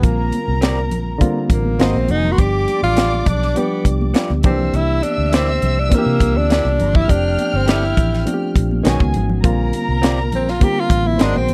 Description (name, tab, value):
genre	lush 1970s-style soul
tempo	102 BPM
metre	4/4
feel	straight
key	unclear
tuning	A4 = 440 Hz
part	breathy tenor saxophone	melody	0.0-11.5 s	Bb3 to G4	-22 LUFS	equal	none
part	dark studio violin section	second line	0.0-11.5 s	Eb4 to F6	-29 LUFS	equal	tape echo
part	barky reed electric piano	accompaniment	0.0-11.5 s	Db3 to G4	-25 LUFS	equal	overdrive
part	vintage muted fingered electric bass	bass	0.0-11.5 s	F1 to C3	-22 LUFS	equal	none
part	tight funk drum kit	drums	0.0-11.5 s	hi-hat, kick drum, snare drum	-18 LUFS	equal	none
part	congas	percussion	0.3-11.5 s	none	-30 LUFS	equal	none
part	electric guitar through a small old amp	riff	0.6-11.4 s	Bb3 to Eb5	-26 LUFS	equal	none
room	little or no reverb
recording	dry, close 1970s-style studio recording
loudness	-17 LUFS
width	mono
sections	0.0-11.5 A section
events	tenor saxophone solo 0.0-11.5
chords	0.0 Bb69; 1.8 Ab9; 2.4 G7; 4.4 C9; 7.1 F69; 8.8 B69; 9.4 Bb69